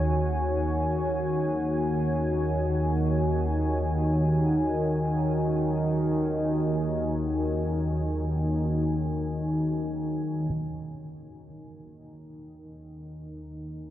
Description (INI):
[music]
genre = dark ambient drone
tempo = free time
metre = none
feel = none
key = unclear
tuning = A4 = 439 Hz
[part]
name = dark analog pad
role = sustained chords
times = 0.0-13.9 s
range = Eb3 to Ab5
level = -30 LUFS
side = equal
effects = chorus
[part]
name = analog drone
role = drone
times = 0.0-13.9 s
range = Eb2 to Eb3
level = -27 LUFS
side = equal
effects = chorus
[part]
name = taiko ensemble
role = percussion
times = 10.5-10.7 s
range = none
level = -40 LUFS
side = equal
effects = low-pass filter on perc
[sound]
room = wet cathedral reverb, RT60 5.6 s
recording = worn, warbling old tape, cassette tape, warbly pitch drift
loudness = -24 LUFS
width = side -12 dB against mid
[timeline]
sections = 0.0-10.5 A section; 10.5-13.9 B section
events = filter sweep on synth drone 0.0-10.5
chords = 0.0 Gb/Eb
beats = free time